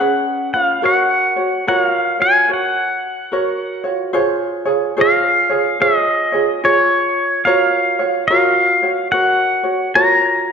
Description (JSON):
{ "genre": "Hawaiian", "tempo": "72 BPM", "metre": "4/4", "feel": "swing 64% on 8ths", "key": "F# major, Db major from 4.1 s", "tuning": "A4 = 442 Hz", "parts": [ { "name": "pedal steel guitar", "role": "melody", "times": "0.0-10.5 s", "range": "Db5 to Bb5", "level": "-15 LUFS", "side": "left 1 dB", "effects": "none" }, { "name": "ukulele", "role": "accompaniment", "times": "0.0-10.5 s", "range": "C#4 to C#5", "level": "-18 LUFS", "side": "right 2 dB", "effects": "none" } ], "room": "wet scoring stage reverb, RT60 1.8 s", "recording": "none", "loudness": "-13 LUFS", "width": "side -6 dB against mid", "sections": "0.0-4.1 A section; 4.1-10.5 B section", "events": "none", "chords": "0.0 C#7; 0.8 F#maj7; 4.1 Dbmaj7; 7.5 Gbmaj7" }